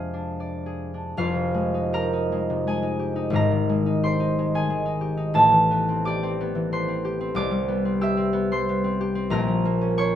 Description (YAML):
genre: classical, solo harp piece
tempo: 75-94 BPM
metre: 3/4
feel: rubato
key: F dorian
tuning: A4 = 440 Hz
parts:
  - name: concert harp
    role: solo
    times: 0.0-10.2 s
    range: F1 to E6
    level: -21 LUFS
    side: equal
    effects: none
room: moderate studio reverb, RT60 0.6 s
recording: none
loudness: -21 LUFS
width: side -10 dB against mid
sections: 0.0-1.2 A section; 1.2-10.2 B section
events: none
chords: 0.0 Fm6; 1.2 Fm9; 3.3 Abmaj7; 5.3 Am9; 7.4 Cmaj7; 9.3 Bbmadd9